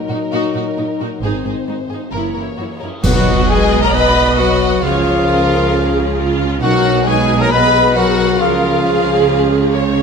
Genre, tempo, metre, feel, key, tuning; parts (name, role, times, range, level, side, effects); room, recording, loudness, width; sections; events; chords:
cinematic, heroic adventure film score; 134 BPM; 4/4; straight; Gb lydian, B lydian from 3.0 s; A4 = 440 Hz
dark symphonic violin section; melody; 0.0-10.0 s; Bb4 to B5; -21 LUFS; left 5 dB
dark French horn section; sustained chords; 0.0-10.0 s; Eb3 to Eb4; -19 LUFS; left 3 dB
warm symphonic violin section; second line; 0.1-9.9 s; Eb4 to B4; -23 LUFS; left 2 dB
warm symphonic viola section; accompaniment; 0.1-10.0 s; Eb4 to D#5; -21 LUFS; right 3 dB
warm studio cello section; bass; 0.1-10.0 s; Gb2 to C#3; -21 LUFS; right 3 dB
clear symphonic double bass section; bass; 1.2-10.0 s; Gb1 to C#2; -21 LUFS; right 4 dB
mellow hollow silver concert flute; second line; 3.0-10.0 s; G#4 to D#5; -21 LUFS; left 1 dB
warm trumpet; stabs; 3.0-10.0 s; E#4 to B4; -20 LUFS; equal
clash cymbals and concert bass drum; percussion; 3.0-3.9 s; -22 LUFS; equal
timpani; percussion; 3.0-3.7 s; B2; -22 LUFS; right 2 dB
moderate scoring stage reverb, RT60 1.8 s; -12 LUFS; side -6 dB against mid
0.0-3.0 A section; 3.0-10.0 B section
band accent 3.0-3.5
0.0 Ebm/Bb; 1.2 Ab; 2.1 Gb7; 3.0 B; 4.8 C#; 6.6 G#m/B; 8.4 C#